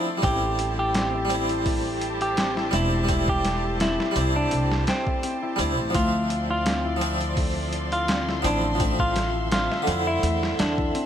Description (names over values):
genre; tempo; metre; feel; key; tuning
trip hop; 84 BPM; 4/4; swing 54% on 16ths; A minor; A4 = 441 Hz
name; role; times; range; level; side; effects
semi-hollow electric guitar; melody; 0.0-11.1 s; C4 to G4; -27 LUFS; equal; dub echo
harpsichord; accompaniment; 0.0-11.1 s; D3 to E5; -28 LUFS; equal; tremolo, tape echo
clear chamber string section; sustained chords; 0.0-11.1 s; D3 to C6; -33 LUFS; equal; none
concert harp; arpeggios; 0.0-11.1 s; A3 to E5; -33 LUFS; left 4 dB; ping-pong delay
upright bass; bass; 0.2-10.9 s; E1 to F2; -28 LUFS; equal; none
boom bap sampler-style drum kit; drums; 0.2-11.1 s; hi-hat, kick drum, snare drum; -27 LUFS; equal; studio reverb
room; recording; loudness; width
light reverb, studio reverb; vinyl crackle; -21 LUFS; side -9 dB against mid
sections
0.0-11.1 A section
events
none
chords
0.2 Am7; 5.9 Dm7